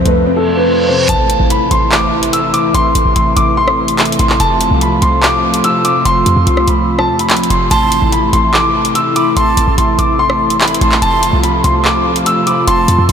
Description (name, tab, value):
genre	hip hop, drill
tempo	145 BPM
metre	4/4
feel	half-time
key	A minor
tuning	A4 = 440 Hz
part	dark concert grand piano	melody	0.0-13.1 s	A4 to E6	-14 LUFS	equal	analog delay
part	dark concert grand piano	accompaniment	0.0-1.1 s	F2 to C4	-19 LUFS	left 4 dB	analog chorus
part	short 808-style bass	bass	0.0-13.1 s	F1 to F2	-16 LUFS	right 1 dB	none
part	drill drum kit	drums	0.1-13.1 s	handclaps, hi-hat, rim click	-18 LUFS	equal	none
part	reverse cymbal and impact	sound effects	0.4-2.7 s	none	-22 LUFS	right 2 dB	none
part	dark analog pad	sustained chords	1.1-13.1 s	C3 to F4	-16 LUFS	left 1 dB	chorus
part	breathy jazz flute	second line	7.7-13.1 s	A5 to C6	-20 LUFS	right 3 dB	analog delay
room	wet huge ambient reverb, RT60 8.7 s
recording	dreamy mix soaked in reverb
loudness	-10 LUFS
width	side -7 dB against mid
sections	0.0-1.1 A section; 1.1-13.1 B section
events	reverse cymbal 0.4-1.1; impact 1.1-2.7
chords	0.0 F; 1.1 Am; 4.4 F; 7.7 Am; 11.0 F